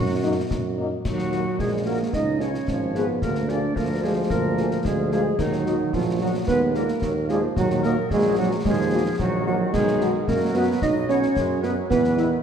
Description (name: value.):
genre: military-style march for wind band.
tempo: 111 BPM.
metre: 2/4.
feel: straight.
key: Eb minor.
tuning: A4 = 436 Hz.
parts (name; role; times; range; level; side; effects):
dark trumpet section; melody; 0.0-12.3 s; Gb4 to F5; -43 LUFS; left 2 dB; none.
mellow euphonium; second line; 0.0-12.4 s; Eb3 to D#4; -24 LUFS; right 2 dB; none.
mellow woodwind section; second line; 0.0-12.4 s; Eb4 to D#5; -30 LUFS; left 1 dB; none.
piccolo; second line; 0.0-0.5 s; Gb5; -45 LUFS; left 4 dB; none.
bright trombone section; sustained chords; 0.0-12.4 s; Bb2 to Eb4; -32 LUFS; right 2 dB; none.
clear tuba; bass; 0.0-12.4 s; Ab1 to F#2; -27 LUFS; right 2 dB; none.
mellow French horn section; accompaniment; 0.2-12.3 s; F3 to Ab4; -31 LUFS; left 6 dB; none.
concert snare drum, concert bass drum and clash cymbals; drums; 0.5-12.3 s; none; -30 LUFS; left 2 dB; none.
room: wet concert hall reverb, RT60 2.0 s.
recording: none.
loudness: -20 LUFS.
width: side -8 dB against mid.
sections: 0.0-1.1 A section; 1.1-12.4 A section.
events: none.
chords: 0.0 Ebm/Gb; 1.1 Ebm; 2.1 Db; 3.2 Bb7/D; 5.4 Ebm; 6.5 Bb7(no3)/Eb; 7.6 Ebm; 9.7 B; 11.9 E.